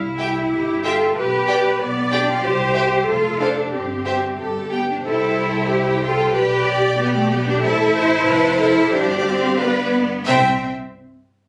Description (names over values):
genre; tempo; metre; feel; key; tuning
quick classical-period movement for string orchestra; 93 BPM; 2/4; straight; C major; A4 = 439 Hz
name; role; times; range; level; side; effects
rich studio cello section; bass; 0.0-10.7 s; A3 to G4; -22 LUFS; equal; none
rich studio double bass section; bass; 0.0-10.7 s; F1 to C2; -30 LUFS; equal; none
clear studio violin section; melody; 0.2-10.7 s; E5 to A5; -29 LUFS; equal; none
rich studio violin section; second line; 0.2-10.7 s; G4 to F5; -26 LUFS; equal; none
rich studio viola section; accompaniment; 0.5-10.7 s; G4 to D5; -24 LUFS; equal; none
room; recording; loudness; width
moderate studio reverb, RT60 0.5 s; recorded on a phone in the room, club reverb, compression; -19 LUFS; mono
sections
0.0-10.3 A section; 10.3-11.5 B section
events
slowing down 7.0-10.3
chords
0.0 C; 1.2 G/B; 2.4 C; 3.1 F; 3.7 C/G; 4.4 G; 5.0 C; 6.3 G/B; 7.6 Am; 8.3 F; 8.9 G7sus4; 9.6 G7; 10.3 C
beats
0.52 | 1.17 1.80 | 2.44 3.08 | 3.73 4.39 | 5.05 5.70 | 6.34 6.98 | 7.63 8.27 | 8.91 9.59 | 10.28